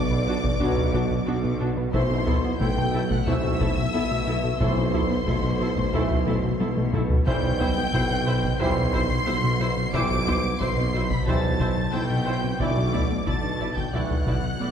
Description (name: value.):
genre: cinematic, hybrid orchestral and electronic film score.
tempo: 90 BPM.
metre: 4/4.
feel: straight.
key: unclear.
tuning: A4 = 440 Hz.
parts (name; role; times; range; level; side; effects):
clear symphonic violin section; melody; 0.0-14.7 s; C6 to D7; -33 LUFS; left 3 dB; none.
rich symphonic violin section; second line; 0.0-14.7 s; C5 to D6; -32 LUFS; left 2 dB; none.
soft round pluck; arpeggios; 0.0-14.7 s; C3 to B4; -34 LUFS; right 1 dB; none.
round analog bass; riff; 0.0-14.7 s; B2 to B3; -28 LUFS; left 2 dB; none.
mellow tuba; bass; 0.0-14.7 s; B1; -30 LUFS; right 1 dB; none.
rich symphonic double bass section; bass; 0.0-14.7 s; B1; -31 LUFS; right 3 dB; none.
warm studio cello section; bass; 0.0-14.7 s; B2; -31 LUFS; right 2 dB; none.
rich symphonic viola section; accompaniment; 0.3-14.7 s; D4 to D5; -32 LUFS; equal; none.
taiko ensemble; drums; 0.4-14.7 s; none; -28 LUFS; equal; none.
mellow French horn section; sustained chords; 0.6-14.2 s; B3 to C5; -34 LUFS; left 2 dB; none.
mellow trombone section; sustained chords; 0.6-14.2 s; B2 to A3; -34 LUFS; right 1 dB; none.
room: wet scoring stage reverb, RT60 1.5 s.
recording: heard from further back in the room.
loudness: -21 LUFS.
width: side -8 dB against mid.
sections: 0.0-14.7 A section.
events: drum fill 6.6-7.3.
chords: 0.0 Bm; 1.9 Am/B; 7.3 C/B; 12.6 Dadd9/B.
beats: 0.60 1.27 | 1.94 2.60 3.27 3.94 | 4.60 5.27 5.94 6.60 | 7.27 7.94 8.60 9.27 | 9.94 10.60 11.27 11.94 | 12.60 13.27 13.94 14.60.